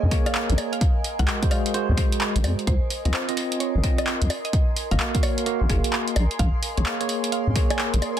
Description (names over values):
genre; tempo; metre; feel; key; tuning
UK garage, two-step garage; 129 BPM; 4/4; swing 64% on 16ths; Bb minor; A4 = 440 Hz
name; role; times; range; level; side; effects
mallet-like synth pluck; melody; 0.0-8.2 s; Ab4 to Ab5; -34 LUFS; equal; chorus, tape echo
tine electric piano; stabs; 0.0-8.2 s; Ab3 to F5; -28 LUFS; right 2 dB; medium stereo tremolo, dub echo
deep soft wobble bass; bass; 0.0-8.0 s; Gb1 to F2; -21 LUFS; equal; chorus
granular cloud pad; texture; 0.0-8.2 s; Bb4 to C6; -33 LUFS; right 1 dB; built-in reverb, sidechain pumping
electronic kick drum; drums; 0.1-7.7 s; none; -22 LUFS; equal; none
punchy analog drum machine; drums; 0.1-8.2 s; bongos, finger snaps, handclaps, hi-hat; -27 LUFS; equal; none
room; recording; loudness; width
little or no reverb; dense, heavily limited modern master; -20 LUFS; side -10 dB against mid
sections
0.0-8.2 A section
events
none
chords
0.0 Bbm7; 0.8 Ab7/C; 2.7 Dbmaj9; 4.3 Gbmaj7; 6.2 Bbm7